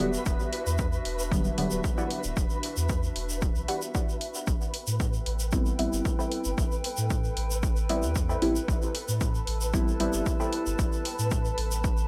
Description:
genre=dub techno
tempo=114 BPM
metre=4/4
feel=straight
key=A minor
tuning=A4 = 440 Hz
part: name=warbly tape-like pad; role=sustained chords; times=0.0-12.1 s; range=D4 to A5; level=-41 LUFS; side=equal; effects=chorus, built-in reverb, phaser, sidechain pumping
part: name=deep mellow chord stab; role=stabs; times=0.0-12.1 s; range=D3 to E4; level=-33 LUFS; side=equal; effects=chorus, phaser, sidechain pumping, dub echo
part: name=soft dub sub bass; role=bass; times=0.0-12.1 s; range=D1 to A2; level=-34 LUFS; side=equal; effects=transformer saturation, sidechain pumping
part: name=electronic hi-hat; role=drums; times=0.0-11.7 s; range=none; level=-37 LUFS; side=equal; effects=overdrive
part: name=flickering grainy texture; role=texture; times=0.0-12.1 s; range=B4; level=-41 LUFS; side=equal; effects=built-in reverb, sidechain pumping
part: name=egg shaker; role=percussion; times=0.1-12.1 s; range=none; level=-40 LUFS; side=equal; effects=none
part: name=electronic kick drum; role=drums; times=0.3-12.0 s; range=none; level=-30 LUFS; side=equal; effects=overdrive
part: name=warbly dusty pluck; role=riff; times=2.0-10.5 s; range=E4 to B5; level=-41 LUFS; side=equal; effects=chorus, sidechain pumping, dub echo
room=light reverb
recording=dry, gritty hardware recording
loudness=-28 LUFS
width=mono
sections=0.0-12.1 A section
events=none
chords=0.0 Em9; 4.5 Am9

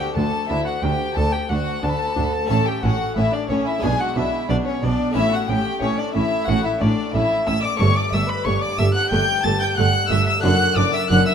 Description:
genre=classical, baroque-style concerto movement with solo episodes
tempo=90 BPM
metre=4/4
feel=straight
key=unclear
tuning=A4 = 441 Hz
part: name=rich chamber violin section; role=melody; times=0.0-11.3 s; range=C#5 to A6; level=-27 LUFS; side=left 6 dB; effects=none
part: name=warm violin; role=melody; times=0.0-11.3 s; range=C#5 to A6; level=-25 LUFS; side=left 1 dB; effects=none
part: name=warm chamber violin section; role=second line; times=0.0-11.3 s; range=C#4 to A5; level=-26 LUFS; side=left 1 dB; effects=none
part: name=harpsichord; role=accompaniment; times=0.0-11.3 s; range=D2 to F#4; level=-27 LUFS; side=left 1 dB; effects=none
part: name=dark chamber viola section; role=accompaniment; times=0.2-11.2 s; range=A3 to D4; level=-29 LUFS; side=right 1 dB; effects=none
part: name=rich chamber double bass section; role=bass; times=0.2-11.2 s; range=F#1 to D2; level=-25 LUFS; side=right 3 dB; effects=none
part: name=warm chamber cello section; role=bass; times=0.2-11.2 s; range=D2 to B2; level=-24 LUFS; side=right 1 dB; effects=none
room=moderate recital hall reverb, RT60 1.4 s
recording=none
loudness=-18 LUFS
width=side -8 dB against mid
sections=0.0-11.3 A section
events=none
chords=0.0 D; 2.5 A; 3.8 G#dim/B; 5.2 A; 7.8 A5/G; 10.4 D/F#

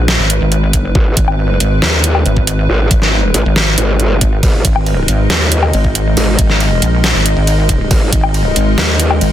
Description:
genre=heavy wobble dubstep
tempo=138 BPM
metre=4/4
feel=half-time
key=G# minor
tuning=A4 = 440 Hz
part: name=evolving wavetable pad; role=sustained chords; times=0.0-9.3 s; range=G#3 to D#5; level=-19 LUFS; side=equal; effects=chorus, built-in reverb, sidechain pumping
part: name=pulsing pluck wobble bass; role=bass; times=0.0-9.3 s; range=G#1 to A#1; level=-13 LUFS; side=equal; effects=chorus, overdrive
part: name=dubstep drum kit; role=drums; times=0.1-9.3 s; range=hi-hat, ride cymbal, snare drum, woodblock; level=-16 LUFS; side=left 1 dB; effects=none
part: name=electronic kick drum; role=drums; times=0.7-8.2 s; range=none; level=-13 LUFS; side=equal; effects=overdrive
part: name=growl bass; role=bass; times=1.0-9.2 s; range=G#1 to D#2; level=-13 LUFS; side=equal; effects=chorus, overdrive
room=little or no reverb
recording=dense, heavily limited modern master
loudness=-10 LUFS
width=side -11 dB against mid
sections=0.0-9.3 A section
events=none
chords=0.0 G#madd9

